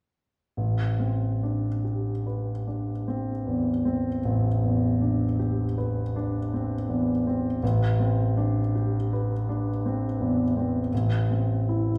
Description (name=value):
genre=classical, impressionist solo piano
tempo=48-56 BPM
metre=3/4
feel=rubato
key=A minor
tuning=A4 = 440 Hz
part: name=clear grand piano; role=solo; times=0.6-12.0 s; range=A1 to B4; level=-26 LUFS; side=equal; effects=none
room=wet stone room reverb, RT60 1.3 s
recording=heard from further back in the room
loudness=-26 LUFS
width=mono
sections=0.6-12.0 A section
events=none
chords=0.6 Am11